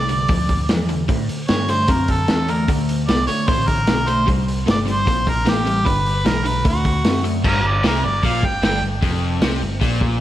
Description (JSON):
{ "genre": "blues rock power trio and southern rock", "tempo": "151 BPM", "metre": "4/4", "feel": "straight", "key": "unclear", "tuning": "A4 = 440 Hz", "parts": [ { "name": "clear harmonica", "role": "melody", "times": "0.0-8.8 s", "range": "F#4 to G5", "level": "-22 LUFS", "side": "right 1 dB", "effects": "overdrive, slapback echo" }, { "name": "overdriven electric guitar", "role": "riff", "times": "0.0-10.2 s", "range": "F2 to C4", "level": "-22 LUFS", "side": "left 1 dB", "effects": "slapback echo" }, { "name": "overdriven picked electric bass", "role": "bass", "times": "0.0-10.2 s", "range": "F1 to A2", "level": "-23 LUFS", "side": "equal", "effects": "none" }, { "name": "vintage drum kit", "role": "drums", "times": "0.1-10.1 s", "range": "crash cymbal, hi-hat, kick drum, snare drum", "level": "-21 LUFS", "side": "equal", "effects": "none" } ], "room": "light reverb, small room ambience", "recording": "none", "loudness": "-16 LUFS", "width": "side -13 dB against mid", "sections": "0.0-7.4 A section; 7.4-10.2 B section", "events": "harmonica solo 7.4-10.2", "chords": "0.0 G7(no3); 1.1 D7; 4.3 C5; 5.9 G; 6.7 D7; 7.4 Fsus24" }